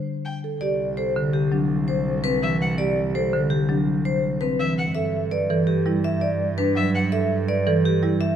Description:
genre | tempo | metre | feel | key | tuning
classical, minimalist pattern music | 166 BPM | 6/4 | straight | unclear | A4 = 440 Hz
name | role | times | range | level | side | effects
warm violin | arpeggios | 0.2-7.1 s | E5 to G5 | -30 LUFS | left 3 dB | none
marimba with soft mallets | arpeggios | 0.4-8.3 s | C4 to B4 | -27 LUFS | right 6 dB | none
vibraphone with hard mallets | melody | 0.6-8.4 s | G4 to E5 | -26 LUFS | left 4 dB | none
rich cello | bass | 0.6-8.4 s | C2 to G2 | -28 LUFS | right 3 dB | none
marimba with hard mallets | accompaniment | 1.2-8.3 s | D3 to G3 | -24 LUFS | equal | none
room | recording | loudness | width
moderate scoring stage reverb, RT60 2.1 s | none | -20 LUFS | side -9 dB against mid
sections
0.6-8.4 A section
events
none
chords
0.0 A7(no3); 0.6 Cadd9(#11); 5.0 G69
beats
0.26 | 0.62 0.98 1.34 1.70 2.06 2.42 | 2.79 3.15 3.51 3.87 4.23 4.59 | 4.95 5.32 5.68 6.04 6.40 6.76 | 7.12 7.48 7.85 8.21

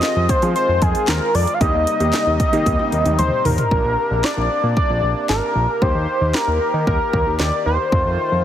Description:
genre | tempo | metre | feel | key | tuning
synth-pop | 114 BPM | 4/4 | straight | Eb major | A4 = 442 Hz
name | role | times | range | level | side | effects
octave-doubled lead | melody | 0.0-8.4 s | Ab4 to F5 | -19 LUFS | left 1 dB | chorus
warm baby grand piano | accompaniment | 0.0-3.4 s | Bb3 to Ab4 | -26 LUFS | right 2 dB | none
accordion | sustained chords | 0.0-8.4 s | C3 to G4 | -28 LUFS | left 1 dB | light tremolo tuning
house drum kit | drums | 0.0-8.0 s | handclaps, hi-hat, kick drum, snare drum, toms | -22 LUFS | equal | overdrive
fat analog bass | bass | 0.2-8.4 s | Ab1 to F3 | -20 LUFS | equal | none
room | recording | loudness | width
light reverb, digital ambience | heavily compressed radio sound, multiband compression | -16 LUFS | side -10 dB against mid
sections
0.0-3.7 A section; 3.7-8.4 B section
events
drum fill 2.7-3.7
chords
0.0 Fm7; 1.6 Eb6; 3.7 Bbadd9; 5.8 Eb; 7.9 F7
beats
0.03 0.56 1.08 | 1.61 2.13 2.66 3.19 | 3.71 4.24 4.77 5.29 | 5.82 6.34 6.87 7.40 | 7.92

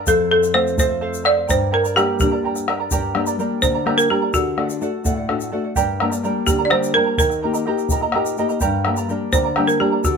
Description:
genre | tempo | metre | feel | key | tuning
andean folk, Andean ensemble | 84 BPM (dotted quarters) | 6/8 | straight | G minor | A4 = 440 Hz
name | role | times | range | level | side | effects
charango | accompaniment | 0.0-10.2 s | G4 to Bb5 | -24 LUFS | right 8 dB | none
nylon-string guitar | accompaniment | 0.0-10.2 s | F2 to G4 | -23 LUFS | left 5 dB | none
folk marimba with hard mallets | melody | 0.1-10.2 s | F#4 to D5 | -18 LUFS | right 2 dB | none
bombo | percussion | 0.1-10.2 s | none | -23 LUFS | left 1 dB | none
egg shaker | percussion | 0.1-10.2 s | none | -31 LUFS | left 6 dB | none
room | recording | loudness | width
moderate studio reverb, RT60 0.7 s | band playing live in one room | -16 LUFS | side -6 dB against mid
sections
0.0-2.9 A section; 2.9-10.2 B section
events
none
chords
0.1 F; 1.5 Gm; 4.3 D; 5.8 Gm; 7.2 Eb; 8.6 Gm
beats
| 0.07 0.78 | 1.49 2.20 | 2.92 3.63 | 4.34 5.05 | 5.76 6.48 | 7.19 7.91 | 8.62 9.33 | 10.05

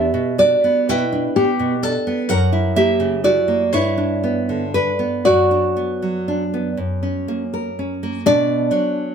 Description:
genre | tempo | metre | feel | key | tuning
romantic duo for nylon-string guitar and classical guitar | 39-45 BPM (dotted quarters) | 6/8 | rubato | B minor | A4 = 439 Hz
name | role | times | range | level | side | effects
flamenco guitar | melody | 0.0-9.1 s | D4 to B4 | -21 LUFS | left 4 dB | slapback echo
nylon-string guitar | accompaniment | 0.0-9.1 s | E2 to G5 | -17 LUFS | right 2 dB | none
room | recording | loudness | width
light reverb | none | -16 LUFS | side -7 dB against mid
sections
0.0-8.3 A section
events
none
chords
0.0 Em7; 2.3 F#7; 3.7 G; 5.2 Bm/F#; 6.8 F#; 8.3 Bm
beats
0.89 | 2.29 3.73 | 5.24 6.78 | 8.26

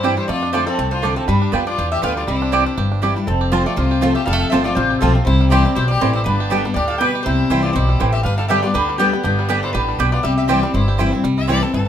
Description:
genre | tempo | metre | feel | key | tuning
bluegrass | 241 BPM | 4/4 | swing 56% on 8ths | C major | A4 = 442 Hz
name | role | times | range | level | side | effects
bluegrass banjo | melody | 0.0-11.9 s | D3 to G4 | -27 LUFS | right 7 dB | none
lap resonator guitar | melody | 0.0-11.1 s | G4 to G5 | -23 LUFS | left 1 dB | none
clear fiddle | second line | 0.0-11.9 s | B3 to E5 | -27 LUFS | left 4 dB | none
picked steel-string acoustic guitar | accompaniment | 0.0-11.9 s | F2 to G4 | -21 LUFS | left 3 dB | none
mandolin | stabs | 0.0-11.6 s | A3 to A5 | -20 LUFS | right 5 dB | none
upright bass | bass | 0.0-11.9 s | F1 to G2 | -20 LUFS | equal | none
room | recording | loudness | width
light reverb | minimal, uncompressed stereo recording | -15 LUFS | side -9 dB against mid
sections
0.0-3.3 A section; 3.3-11.2 B section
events
none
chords
0.3 F6; 1.3 G7; 2.3 Cadd9; 3.3 F; 5.3 C; 6.3 G; 7.3 C; 8.3 G; 10.2 C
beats
0.04 | 0.28 0.54 0.78 1.03 | 1.28 1.53 1.78 2.03 | 2.28 2.53 2.78 3.03 | 3.28 3.53 3.77 4.02 | 4.27 4.52 4.77 5.02 | 5.27 5.52 5.76 6.01 | 6.26 6.51 6.76 7.01 | 7.26 7.51 7.75 8.00 | 8.25 8.50 8.75 9.00 | 9.25 9.49 9.74 9.99 | 10.24 10.49 10.74 10.99 | 11.24 11.49 11.73

